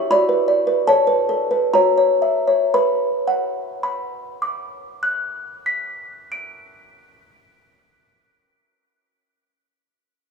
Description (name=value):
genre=classical, lullaby for music box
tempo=56-84 BPM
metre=3/4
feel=rubato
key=B minor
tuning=A4 = 440 Hz
part: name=music box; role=solo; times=0.0-9.6 s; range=F#4 to D7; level=-17 LUFS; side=equal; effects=none
room=moderate huge ambient reverb, RT60 4.5 s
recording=small room ambience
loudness=-17 LUFS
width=side -5 dB against mid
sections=0.0-2.7 A section; 2.7-9.1 B section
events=slowing down 0.0-2.7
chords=0.1 Bm/F#; 1.7 F#7; 2.7 Bm